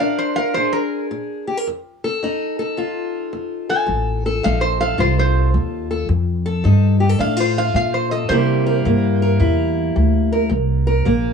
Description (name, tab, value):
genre	acoustic country blues, solo or duo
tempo	109 BPM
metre	4/4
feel	swing 67% on 8ths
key	F mixolydian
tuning	A4 = 440 Hz
part	metal-body resonator slide guitar	melody	0.0-9.4 s	Bb4 to Ab5	-21 LUFS	right 3 dB	plate reverb
part	fingerpicked steel-string acoustic guitar	accompaniment	0.0-11.3 s	F2 to Bb4	-21 LUFS	left 2 dB	none
part	upright bass	bass	3.9-11.3 s	A1 to C3	-17 LUFS	equal	transformer saturation
room	light reverb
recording	worn, warbling old tape, cassette tape, warbly pitch drift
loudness	-16 LUFS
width	side -6 dB against mid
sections	0.0-11.3 A section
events	resonator guitar played with a steel bar solo 0.0-11.3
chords	0.0 Bb7; 1.7 F7; 8.3 C7